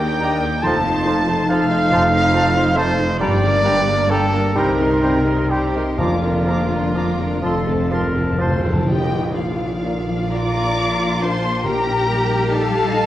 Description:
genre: classical, slow romantic movement for symphony orchestra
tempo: 40-48 BPM (dotted quarters)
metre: 6/8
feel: rubato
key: Bb major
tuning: A4 = 440 Hz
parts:
  - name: warm studio violin section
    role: melody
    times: 0.0-13.1 s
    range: F5 to Eb6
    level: -28 LUFS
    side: left 2 dB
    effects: none
  - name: warm symphonic violin section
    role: second line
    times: 0.0-13.1 s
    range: F4 to Bb5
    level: -30 LUFS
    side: left 1 dB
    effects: none
  - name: rich studio viola section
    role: accompaniment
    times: 0.0-13.1 s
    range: A3 to D5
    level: -26 LUFS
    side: right 1 dB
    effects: none
  - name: dark French horn section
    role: sustained chords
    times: 0.0-12.6 s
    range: G3 to Eb4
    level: -25 LUFS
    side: left 2 dB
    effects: none
  - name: concert harp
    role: arpeggios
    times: 0.0-13.1 s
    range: F2 to Eb6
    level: -27 LUFS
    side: left 4 dB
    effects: none
  - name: mellow trumpet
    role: stabs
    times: 0.0-8.3 s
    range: F4 to A5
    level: -21 LUFS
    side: right 1 dB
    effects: none
  - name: rich studio cello section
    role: bass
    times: 0.0-13.1 s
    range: Eb2 to G4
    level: -23 LUFS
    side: right 1 dB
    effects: none
  - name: rich studio double bass section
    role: bass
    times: 0.0-13.1 s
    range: F1 to Eb2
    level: -25 LUFS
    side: right 2 dB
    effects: none
  - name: bright small flute group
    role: second line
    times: 0.2-8.5 s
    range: Bb5 to D6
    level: -33 LUFS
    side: right 3 dB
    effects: none
  - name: clear clarinet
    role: second line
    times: 0.2-8.9 s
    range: D4 to C5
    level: -29 LUFS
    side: left 1 dB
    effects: none
  - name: clear oboe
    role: second line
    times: 0.2-8.5 s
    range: G5 to Bb5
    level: -31 LUFS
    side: right 2 dB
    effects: none
  - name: clear bassoon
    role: accompaniment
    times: 0.2-8.5 s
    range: Eb3 to G3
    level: -29 LUFS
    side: right 1 dB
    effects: none
  - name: cymbal swell and tam-tam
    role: percussion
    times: 6.0-12.4 s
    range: none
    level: -31 LUFS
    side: left 1 dB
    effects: none
  - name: timpani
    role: percussion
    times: 6.0-12.9 s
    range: F2 to Bb2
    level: -26 LUFS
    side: equal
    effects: none
room: wet recital hall reverb, RT60 1.9 s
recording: worn, warbling old tape, cassette tape, warbly pitch drift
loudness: -16 LUFS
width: side -13 dB against mid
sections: 0.0-8.9 A section; 8.9-13.1 B section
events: timpani fill 7.4-8.9; band accent 8.9-9.8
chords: 0.0 Ebmaj7; 0.6 F7; 3.2 Gm; 4.6 Cm7; 6.0 Bb/F; 7.4 F; 8.9 Bb; 11.6 Eb/Bb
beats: | 0.64 1.91 | 3.21 4.57 | 6.00 7.44 | 8.86 10.32 | 11.64 12.89

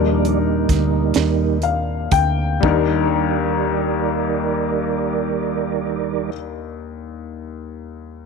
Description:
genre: slow gospel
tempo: 38-46 BPM (dotted quarters)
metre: 6/8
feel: straight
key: Eb major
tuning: A4 = 441 Hz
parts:
  - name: warm upright piano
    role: accompaniment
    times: 0.0-8.3 s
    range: Eb2 to G5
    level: -22 LUFS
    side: left 11 dB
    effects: none
  - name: mellow tonewheel organ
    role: sustained chords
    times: 0.0-6.3 s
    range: Eb3 to D5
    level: -22 LUFS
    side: right 14 dB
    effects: fast rotary speaker, chorus vibrato
  - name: hollow-body short-scale fingered electric bass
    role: bass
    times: 0.0-6.3 s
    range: D2 to Eb2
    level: -22 LUFS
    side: equal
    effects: none
  - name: tight funk drum kit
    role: drums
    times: 0.2-2.9 s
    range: hi-hat, kick drum, snare drum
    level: -20 LUFS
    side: right 3 dB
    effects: none
room: light reverb, small room ambience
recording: 1960s-style stereo with parts hard left and right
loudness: -17 LUFS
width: side -4 dB against mid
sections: 0.0-2.6 A section; 2.6-5.8 B section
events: slowing down 0.0-2.6; tonewheel organ solo 0.0-2.6; upright piano fill 1.1-2.6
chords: 0.0 Ebmaj7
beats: 1.15 | 2.63 4.21

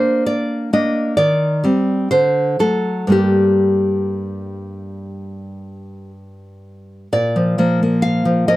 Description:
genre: romantic piece for solo classical guitar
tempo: 58-69 BPM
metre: 4/4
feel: rubato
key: G minor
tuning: A4 = 439 Hz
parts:
  - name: nylon-string guitar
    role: solo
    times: 0.0-8.6 s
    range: G2 to F5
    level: -15 LUFS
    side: equal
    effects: none
room: light reverb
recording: dark, warm production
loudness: -14 LUFS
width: side -17 dB against mid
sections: 0.0-7.1 A section; 7.1-8.6 B section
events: none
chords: 0.0 Gm (rootless); 1.2 Cm/Eb; 2.1 D7; 3.1 Gm; 7.1 Bb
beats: 0.29 1.19 2.12 | 3.12 4.13 5.14 6.14 | 7.13 8.04

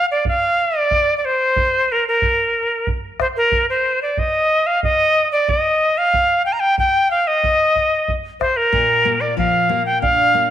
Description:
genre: andean folk, Andean ensemble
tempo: 92 BPM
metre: 4/4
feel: straight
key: unclear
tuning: A4 = 440 Hz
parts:
  - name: bright reedy quena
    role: melody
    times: 0.0-10.5 s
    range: Bb4 to Bb5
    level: -15 LUFS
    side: equal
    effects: slapback echo
  - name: bombo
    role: percussion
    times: 0.3-10.2 s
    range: none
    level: -24 LUFS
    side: right 2 dB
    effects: none
  - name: nylon-string guitar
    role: accompaniment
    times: 8.7-10.5 s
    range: Bb2 to D4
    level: -22 LUFS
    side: left 8 dB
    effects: none
room: moderate echo chamber reverb, RT60 1.6 s, small room reverb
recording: 1960s-style stereo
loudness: -15 LUFS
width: side -11 dB against mid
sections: 0.0-10.5 A section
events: none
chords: 0.0 N.C.; 8.7 Bb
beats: 0.25 | 0.90 1.56 2.21 2.87 | 3.52 4.17 4.83 5.48 | 6.13 6.78 7.43 8.08 | 8.73 9.38 10.02

